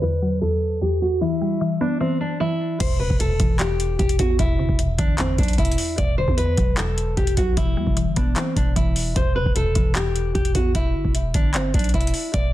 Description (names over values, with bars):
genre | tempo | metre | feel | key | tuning
hip hop, trap | 151 BPM | 4/4 | half-time | E minor | A4 = 440 Hz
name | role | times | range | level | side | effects
nylon-string guitar | melody | 0.0-12.5 s | C4 to D5 | -25 LUFS | equal | low-pass filter, digital delay
mallet-like synth pluck | accompaniment | 0.0-10.8 s | E2 to B3 | -25 LUFS | equal | chorus, low-pass filter
growling 808-style bass | bass | 2.8-12.5 s | E1 to E2 | -25 LUFS | equal | none
booming analog drum machine | drums | 2.8-12.5 s | crash cymbal, handclaps, hi-hat, kick drum | -21 LUFS | equal | none
room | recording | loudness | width
digital ambience | dense, heavily limited modern master, low-pass filter | -18 LUFS | side -14 dB against mid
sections
0.0-2.8 A section; 2.8-12.5 B section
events
filter sweep 0.0-2.8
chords
0.0 D/E; 1.2 Em; 2.8 C/E; 4.4 Cmaj9/E; 6.0 D/E; 7.6 Em; 9.2 C/E; 10.7 Em7